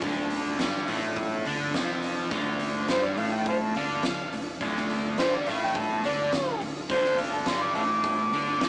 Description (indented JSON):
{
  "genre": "blues rock power trio and southern rock",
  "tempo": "105 BPM",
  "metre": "4/4",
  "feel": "straight",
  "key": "D minor",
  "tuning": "A4 = 436 Hz",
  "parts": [
    { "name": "overdriven tonewheel organ", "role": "sustained chords", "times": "0.0-8.7 s", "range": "D4 to C5", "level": "-38 LUFS", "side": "equal", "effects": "none" },
    { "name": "distorted electric guitar", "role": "riff", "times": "0.0-8.7 s", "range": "D2 to D4", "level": "-28 LUFS", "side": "equal", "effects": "distortion" },
    { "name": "vintage muted fingered electric bass", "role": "bass", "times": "0.0-8.7 s", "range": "D1 to D2", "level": "-42 LUFS", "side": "equal", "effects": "none" },
    { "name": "oversized low-tuned drum kit", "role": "drums", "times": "0.0-8.7 s", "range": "hi-hat, kick drum, snare drum", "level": "-32 LUFS", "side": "equal", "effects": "none" },
    { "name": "overdriven harmonica", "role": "melody", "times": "2.9-8.7 s", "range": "C5 to D6", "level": "-27 LUFS", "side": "equal", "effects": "none" }
  ],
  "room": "moderate small room ambience, RT60 0.5 s",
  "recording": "rough rehearsal-room recording, tube saturation, small speaker sound",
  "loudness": "-24 LUFS",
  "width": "side -29 dB against mid",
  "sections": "0.0-8.7 A section",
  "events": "none",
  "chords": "0.0 Dm"
}